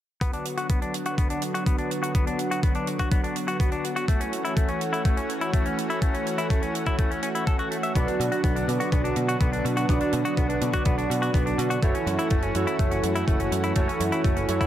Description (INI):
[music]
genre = italo disco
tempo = 124 BPM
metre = 4/4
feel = straight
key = B minor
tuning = A4 = 440 Hz
[part]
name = lush unison pad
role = sustained chords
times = 0.2-14.7 s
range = D3 to F#4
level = -29 LUFS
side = equal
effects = chorus
[part]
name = direct-recorded clean electric guitar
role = arpeggios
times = 0.2-14.7 s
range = A3 to E5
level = -30 LUFS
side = left 2 dB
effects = low-pass filter, digital delay
[part]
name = electronic kick drum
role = drums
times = 0.2-14.7 s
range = none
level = -24 LUFS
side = equal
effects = overdrive
[part]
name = hi-hat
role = drums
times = 0.2-14.7 s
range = none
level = -38 LUFS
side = right 6 dB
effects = none
[part]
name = analog synth brass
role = stabs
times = 8.0-14.7 s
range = D4 to D5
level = -28 LUFS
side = right 3 dB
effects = chorus, digital delay
[part]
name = picked electric bass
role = bass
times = 8.0-14.6 s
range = F#1 to B2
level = -29 LUFS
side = equal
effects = digital delay
[sound]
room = light reverb, digital ambience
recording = none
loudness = -22 LUFS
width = side -12 dB against mid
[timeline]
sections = 0.2-14.7 A section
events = none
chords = 0.2 Bm; 4.1 F#m7; 8.0 Bm; 11.8 F#m7